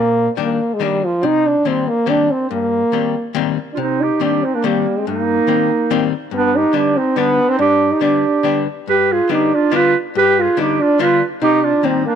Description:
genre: musette waltz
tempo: 142 BPM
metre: 3/4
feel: straight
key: C minor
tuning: A4 = 440 Hz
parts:
  - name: mellow French horn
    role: melody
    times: 0.0-12.2 s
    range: F3 to G4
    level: -16 LUFS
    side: right 1 dB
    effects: none
  - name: archtop guitar, miked and amplified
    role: accompaniment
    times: 0.0-12.1 s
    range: G2 to D4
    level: -21 LUFS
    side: left 12 dB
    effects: none
  - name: warm clarinet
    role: second line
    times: 3.7-12.2 s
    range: Bb3 to B4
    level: -20 LUFS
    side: right 9 dB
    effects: none
room: light reverb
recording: 1960s-style stereo with parts hard left and right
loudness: -14 LUFS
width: side -8 dB against mid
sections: 0.0-12.2 A section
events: none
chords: 0.0 Ebmaj7; 1.2 Cm7; 6.3 G; 11.4 Cm7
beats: 0.38 0.80 | 1.22 1.65 2.07 | 2.50 2.92 3.35 | 3.78 4.21 4.63 | 5.06 5.48 5.91 | 6.33 6.75 7.18 | 7.60 8.02 8.45 | 8.88 9.30 9.73 | 10.15 10.57 10.99 | 11.41 11.83

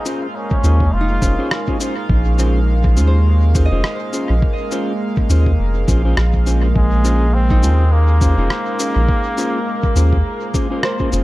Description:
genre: ambient dub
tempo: 103 BPM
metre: 4/4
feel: swing 57% on 16ths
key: Bb minor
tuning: A4 = 441 Hz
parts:
  - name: trombone with straight mute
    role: melody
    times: 0.0-1.8, 6.8-10.8 s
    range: Ab3 to F4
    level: -25 LUFS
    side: equal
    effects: vintage 12-bit sampler grit, tape echo
  - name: warm analog pad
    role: sustained chords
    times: 0.0-11.2 s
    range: Ab3 to F5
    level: -24 LUFS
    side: right 1 dB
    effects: chorus
  - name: mellow electric guitar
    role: stabs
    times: 0.1-11.2 s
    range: Db4 to C5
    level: -25 LUFS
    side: left 2 dB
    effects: dub echo
  - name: electronic cabasa and rim click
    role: drums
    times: 0.1-11.2 s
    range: none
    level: -25 LUFS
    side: left 1 dB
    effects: dub echo
  - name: electronic kick drum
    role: drums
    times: 0.5-11.1 s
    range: none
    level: -19 LUFS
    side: equal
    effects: none
  - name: soft dub sub bass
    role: bass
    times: 0.6-11.2 s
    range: F1 to Eb2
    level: -14 LUFS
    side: equal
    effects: none
  - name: concert harp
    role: arpeggios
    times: 1.0-11.2 s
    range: Eb4 to Eb5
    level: -29 LUFS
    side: right 1 dB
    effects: tape echo
room: digital ambience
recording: echo-heavy mix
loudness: -14 LUFS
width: side -18 dB against mid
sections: 0.0-11.2 A section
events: band accent 10.8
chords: 0.0 Bbm7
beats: 0.35 0.93 1.51 | 2.09 2.68 3.26 3.84 | 4.42 5.01 5.59 6.17 | 6.75 7.34 7.92 8.50 | 9.09 9.67 10.25 10.83

